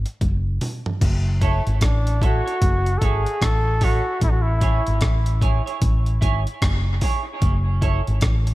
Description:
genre	dub reggae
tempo	75 BPM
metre	4/4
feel	swing 61% on 16ths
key	F# minor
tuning	A4 = 438 Hz
part	vintage muted fingered electric bass	bass	0.0-8.5 s	F#1 to A1	-20 LUFS	equal	none
part	breakbeat sampler-style drum kit	drums	0.1-8.5 s	crash cymbal, hi-hat, kick drum, rim click, toms	-22 LUFS	equal	overdrive
part	clean electric guitar	accompaniment	1.4-8.0 s	E4 to C#5	-29 LUFS	right 5 dB	lush chorus, dub echo
part	clear flugelhorn	melody	1.8-5.0 s	D4 to A4	-26 LUFS	left 1 dB	dub echo
room	digital ambience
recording	echo-heavy mix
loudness	-18 LUFS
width	side -18 dB against mid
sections	0.0-1.0 A section; 1.0-8.5 B section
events	break 0.0-1.0; drum fill 0.2-1.0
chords	0.0 N.C.; 1.0 F#m7

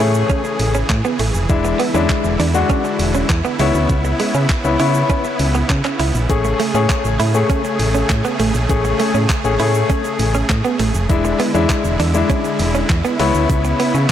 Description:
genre	dance-pop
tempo	100 BPM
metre	4/4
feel	straight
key	A major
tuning	A4 = 439 Hz
part	clear grand piano	accompaniment	0.0-14.0 s	G#3 to G#4	-19 LUFS	left 6 dB	sidechain pumping
part	supersaw chords	sustained chords	0.0-14.1 s	C#3 to G#4	-24 LUFS	right 2 dB	sidechain pumping
part	direct-recorded clean electric guitar	riff	0.0-14.1 s	G#3 to E4	-22 LUFS	right 6 dB	lush chorus
part	solid FM bass	bass	0.0-14.1 s	E1 to C#3	-18 LUFS	right 1 dB	sidechain pumping
part	crisp 8-bit digital drum machine	drums	0.0-14.1 s	handclaps, hi-hat, kick drum, shaker	-21 LUFS	right 1 dB	overdrive
part	egg shaker	percussion	6.3-14.1 s	none	-44 LUFS	right 13 dB	none
room	light reverb, digital ambience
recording	blown-out, overdriven recording, overdrive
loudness	-14 LUFS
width	side -10 dB against mid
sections	0.0-14.1 A section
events	none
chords	0.0 Amaj7; 1.5 E7; 3.6 C#m7; 6.3 Amaj7; 11.1 E7; 13.2 C#m7

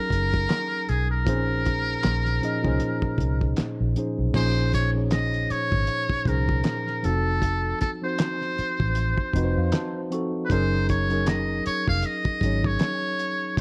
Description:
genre	R&B, neo-soul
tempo	78 BPM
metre	4/4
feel	swing 57% on 16ths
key	Bb minor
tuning	A4 = 440 Hz
part	trumpet with metal mute	melody	0.0-13.6 s	Ab4 to F5	-30 LUFS	equal	slapback echo
part	mellow tine electric piano	accompaniment	0.0-13.6 s	Bb2 to Db6	-30 LUFS	equal	none
part	vintage muted fingered electric bass	bass	0.1-13.6 s	F1 to F2	-28 LUFS	equal	none
part	cloth-damped thuddy drum kit	drums	0.1-13.6 s	crash cymbal, handclaps, hi-hat, kick drum, snare drum	-29 LUFS	equal	none
room	small room ambience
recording	dry, close 1970s-style studio recording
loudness	-25 LUFS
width	mono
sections	0.0-4.3 A section; 4.3-13.6 B section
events	tine electric piano fill 9.0-10.5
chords	0.0 Gb69; 1.3 Bbm11; 7.0 F7b9; 10.5 Gb69

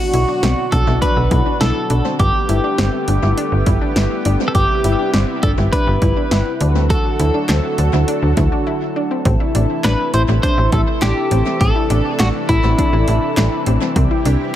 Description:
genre	synth-pop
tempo	102 BPM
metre	4/4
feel	straight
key	unclear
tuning	A4 = 440 Hz
part	twelve-string electric guitar	melody	0.0-13.6 s	E4 to C5	-21 LUFS	equal	harmonic tremolo, tape echo
part	lush unison pad	sustained chords	0.0-14.6 s	B2 to A4	-22 LUFS	right 1 dB	chorus
part	analog pluck	arpeggios	0.0-14.5 s	C4 to G4	-23 LUFS	left 4 dB	chorus, tape echo
part	slap-like FM bass	bass	0.1-14.4 s	G1 to D2	-16 LUFS	equal	none
part	punchy analog drum machine	drums	0.1-14.4 s	handclaps, hi-hat, kick drum, snare drum	-20 LUFS	equal	overdrive, tape echo
room	light reverb, digital ambience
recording	echo-heavy mix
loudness	-14 LUFS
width	side -12 dB against mid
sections	0.0-9.3 A section; 9.3-14.6 B section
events	break 8.7-9.3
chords	0.0 Bm; 2.2 Gadd9; 4.5 Cmaj7/G; 6.6 D; 9.3 Am; 14.0 C

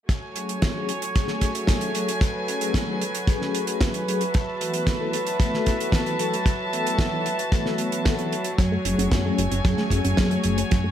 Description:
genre	italo disco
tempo	113 BPM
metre	4/4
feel	straight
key	F# minor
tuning	A4 = 442 Hz
part	rich chamber string section	sustained chords	0.1-10.9 s	F#3 to A5	-27 LUFS	right 1 dB	none
part	damped 70s drum kit	drums	0.1-10.8 s	hi-hat, snare drum	-29 LUFS	right 3 dB	gated reverb
part	kick drum	drums	0.1-10.8 s	none	-22 LUFS	equal	none
part	mellow synth brass	stabs	0.4-10.6 s	E3 to A4	-28 LUFS	left 3 dB	chorus, ping-pong delay
part	wide unison pluck	arpeggios	8.6-10.9 s	F#3 to C#4	-30 LUFS	right 2 dB	ping-pong delay
part	fat analog bass	bass	8.6-10.9 s	F#1 to F#2	-25 LUFS	equal	none
room	light reverb, small room ambience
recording	none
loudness	-21 LUFS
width	side -10 dB against mid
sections	0.1-10.9 A section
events	none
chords	0.1 F#madd9; 4.3 Esus4; 8.6 F#madd9

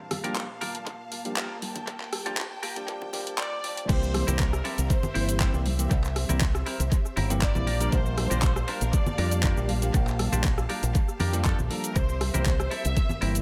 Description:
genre	nu-disco, nu disco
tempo	119 BPM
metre	4/4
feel	straight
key	G dorian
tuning	A4 = 442 Hz
part	warm symphonic string section	sustained chords	0.0-13.4 s	Bb2 to A5	-41 LUFS	equal	sidechain pumping
part	clean electric guitar	riff	0.0-13.4 s	Bb3 to C5	-38 LUFS	equal	subtle chorus, low-pass filter, analog delay
part	pop drum kit	drums	0.1-13.4 s	cabasa, crash cymbal, handclaps, hi-hat, rim click	-35 LUFS	equal	overdrive, analog delay
part	congas	percussion	0.1-13.2 s	none	-39 LUFS	equal	none
part	bell-like tine electric piano	accompaniment	0.2-13.4 s	E3 to Bb4	-37 LUFS	equal	sidechain pumping, low-pass filter, analog delay
part	electronic kick drum	drums	0.4-13.1 s	none	-27 LUFS	equal	overdrive, high-pass filter on kick, high-pass filter on room
part	rich studio violin section	melody	3.4-13.2 s	G4 to E5	-38 LUFS	equal	dub echo
part	fingered electric bass with an envelope filter	bass	3.9-13.4 s	G1 to F2	-30 LUFS	equal	tube saturation
room	light reverb, digital ambience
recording	echo-heavy mix, high-pass filter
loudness	-27 LUFS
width	mono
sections	0.0-3.9 A section; 3.9-13.4 B section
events	build-up 0.0-3.9; filter sweep on tine electric piano 0.0-3.9; filter sweep on string section 0.0-3.9; drop 3.9-13.4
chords	0.0 Gm7/Bb; 3.9 C7; 7.7 Gm7/Bb; 12.0 C7

